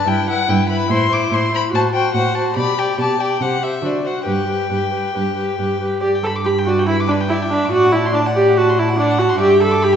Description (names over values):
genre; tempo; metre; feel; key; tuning
quick classical-period movement for string quartet; 142 BPM; 4/4; rubato; G major; A4 = 440 Hz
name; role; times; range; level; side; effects
rich violin; melody; 0.0-10.0 s; B4 to D6; -22 LUFS; left 5 dB; none
rich violin; second line; 0.0-10.0 s; B4 to D6; -26 LUFS; left 2 dB; none
warm viola; accompaniment; 0.0-10.0 s; D4 to A4; -17 LUFS; equal; none
rich cello; bass; 0.1-10.0 s; G2 to D3; -22 LUFS; right 3 dB; none
room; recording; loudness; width
wet recital hall reverb, RT60 1.6 s; heard from further back in the room, nothing above 7.8 kHz; -15 LUFS; side -8 dB against mid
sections
0.0-6.0 A section; 6.0-10.0 B section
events
none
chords
0.1 Em/G; 0.9 Am; 1.7 F#dim/A; 2.6 G/B; 3.4 C; 3.8 D7; 4.3 G; 7.7 D/A; 9.4 G